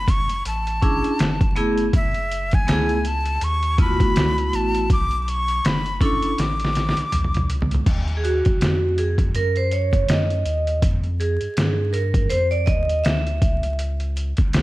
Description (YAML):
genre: hip hop, jazz-hop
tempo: 81 BPM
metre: 4/4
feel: swing 57% on 16ths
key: unclear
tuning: A4 = 440 Hz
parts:
  - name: breathy bright jazz flute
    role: melody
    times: 0.0-7.5 s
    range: Fb5 to D6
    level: -25 LUFS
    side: left 1 dB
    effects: tape echo
  - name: round analog bass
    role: bass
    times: 0.0-14.6 s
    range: F#1 to G2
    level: -24 LUFS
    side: equal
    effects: none
  - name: trip hop sampler-style drum kit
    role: drums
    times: 0.1-14.6 s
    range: crash cymbal, hi-hat, kick drum, snare drum, toms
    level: -20 LUFS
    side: equal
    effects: overdrive, vintage 12-bit sampler grit
  - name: vibraphone with medium hard mallets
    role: accompaniment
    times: 0.8-13.7 s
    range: A3 to Fb5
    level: -23 LUFS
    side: right 1 dB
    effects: none
room: digital ambience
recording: vinyl crackle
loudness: -18 LUFS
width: side -18 dB against mid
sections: 0.0-7.9 A section; 7.9-14.6 B section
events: drum fill 6.4-7.9; vibraphone solo 7.9-14.6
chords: 0.0 Bm11; 1.9 Gbm11; 4.9 Bm9; 7.9 Ebmadd9; 10.8 Fm9; 13.4 N.C.